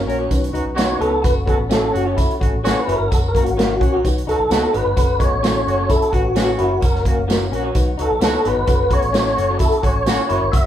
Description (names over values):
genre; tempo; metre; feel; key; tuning
uptempo 1960s-style soul; 129 BPM; 4/4; straight; F# dorian; A4 = 439 Hz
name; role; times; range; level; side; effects
mellow tonewheel organ; melody; 0.0-10.7 s; C#4 to E5; -20 LUFS; equal; chorus vibrato, fast rotary speaker
mellow reed electric piano; accompaniment; 0.0-10.7 s; A#3 to E5; -27 LUFS; left 2 dB; fast tremolo
mellow small flute group; sustained chords; 0.0-10.7 s; A4 to C#6; -33 LUFS; left 2 dB; none
vintage muted fingered electric bass; bass; 0.0-10.7 s; F#1 to C#2; -24 LUFS; equal; none
clear horn section; second line; 0.1-10.4 s; A3 to A#4; -29 LUFS; right 2 dB; none
electric guitar through a small old amp; riff; 0.1-10.7 s; A#3 to F#4; -26 LUFS; left 3 dB; none
natural country drum kit; drums; 0.1-10.6 s; hi-hat, kick drum, snare drum; -19 LUFS; equal; none
electric guitar through a small old amp; stabs; 0.2-10.4 s; B3 to C#5; -29 LUFS; right 3 dB; none
tambourine; percussion; 0.3-10.6 s; none; -36 LUFS; right 6 dB; none
room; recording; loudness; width
light reverb; band playing live in one room; -15 LUFS; side -11 dB against mid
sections
0.0-10.7 A section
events
tonewheel organ solo 0.0-10.7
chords
0.3 Badd9; 1.2 F#m; 2.9 F#; 4.0 Badd9; 5.0 F#m; 6.6 F#; 7.8 Badd9; 8.7 F#m